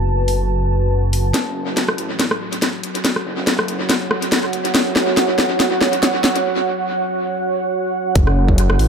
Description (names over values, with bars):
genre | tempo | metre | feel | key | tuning
deep dubstep | 141 BPM | 4/4 | swing 55% on 16ths, half-time | F# minor | A4 = 440 Hz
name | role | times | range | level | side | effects
deep dark ambient pad | sustained chords | 0.0-8.9 s | F#4 to A5 | -21 LUFS | right 2 dB | chorus, built-in reverb
dark detuned saw bass | bass | 0.0-8.9 s | F#1 to A1 | -21 LUFS | equal | high-pass filter
garage drum kit | drums | 0.3-8.9 s | hi-hat, rim click, snare drum | -18 LUFS | left 1 dB | studio reverb, dub echo
electronic kick drum | drums | 8.2-8.6 s | none | -15 LUFS | equal | studio reverb
room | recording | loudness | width
moderate spring reverb, RT60 1.7 s, digital ambience | echo-heavy mix | -16 LUFS | side -6 dB against mid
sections
0.0-1.3 A section; 1.3-8.2 B section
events
build-up 1.3-8.2; drum fill 1.3-6.5; filter sweep on ambient pad 1.3-8.2; break 6.5-8.2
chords
0.0 F#5